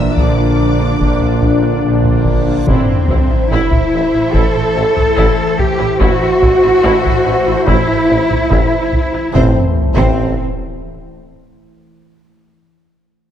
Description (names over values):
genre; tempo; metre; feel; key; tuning
cinematic, hybrid orchestral and electronic film score; 72 BPM; 4/4; straight; A dorian; A4 = 441 Hz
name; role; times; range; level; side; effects
warm symphonic violin section; melody; 0.0-10.4 s; E5 to E6; -29 LUFS; left 6 dB; low-pass filter
warm symphonic violin section; second line; 0.0-10.4 s; C5 to E5; -25 LUFS; left 3 dB; none
warm symphonic viola section; accompaniment; 0.0-10.4 s; F3 to F4; -23 LUFS; equal; low-pass filter
evolving wavetable pad; sustained chords; 0.0-9.8 s; D3 to D5; -20 LUFS; left 2 dB; chorus, built-in reverb, low-pass filter
mellow French horn section; sustained chords; 0.0-9.7 s; Bb3 to A4; -19 LUFS; left 1 dB; low-pass filter
clear tuba; bass; 0.0-10.3 s; A1 to Bb1; -21 LUFS; right 2 dB; none
dark symphonic cello section; bass; 0.0-10.4 s; D3 to A4; -17 LUFS; right 1 dB; none
dark symphonic double bass section; bass; 0.0-10.4 s; A1 to Bb1; -19 LUFS; right 3 dB; none
reverse cymbal and sub drop; sound effects; 2.7-12.7 s; none; -18 LUFS; left 1 dB; none
taiko ensemble; drums; 0.2-11.6 s; none; -18 LUFS; left 1 dB; none
room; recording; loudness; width
moderate scoring stage reverb, RT60 2.0 s; dark, warm production; -11 LUFS; side -10 dB against mid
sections
0.0-2.7 A section; 2.7-9.3 B section; 9.3-12.7 C section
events
reverse cymbal 2.7; impact 2.7-6.0, 9.3-12.7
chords
0.0 Bb; 2.7 Am